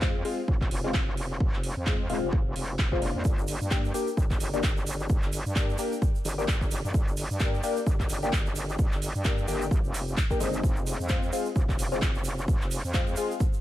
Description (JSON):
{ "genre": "bass house", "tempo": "130 BPM", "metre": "4/4", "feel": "swing 57% on 16ths", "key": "G phrygian", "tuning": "A4 = 440 Hz", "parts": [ { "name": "band-passed chord stab", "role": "stabs", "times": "0.0-13.3 s", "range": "Ab3 to G4", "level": "-32 LUFS", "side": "left 3 dB", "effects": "chorus, phaser, cassette tape, sidechain pumping, ping-pong delay" }, { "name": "metallic wobble bass", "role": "bass", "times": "0.0-13.2 s", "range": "Eb1 to G2", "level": "-32 LUFS", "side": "equal", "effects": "chorus, sidechain pumping" }, { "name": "electronic kick drum", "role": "drums", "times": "0.0-13.5 s", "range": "none", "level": "-26 LUFS", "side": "equal", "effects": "none" }, { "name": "house drum kit", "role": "drums", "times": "0.0-13.3 s", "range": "handclaps, hi-hat", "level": "-36 LUFS", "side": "right 1 dB", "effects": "none" }, { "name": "egg shaker", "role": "percussion", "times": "3.2-13.6 s", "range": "none", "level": "-41 LUFS", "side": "right 6 dB", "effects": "none" } ], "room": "little or no reverb", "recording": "none", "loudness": "-25 LUFS", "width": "side -14 dB against mid", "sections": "0.0-13.6 A section", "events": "none", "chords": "0.0 Fm; 3.2 Gm; 10.6 Fm" }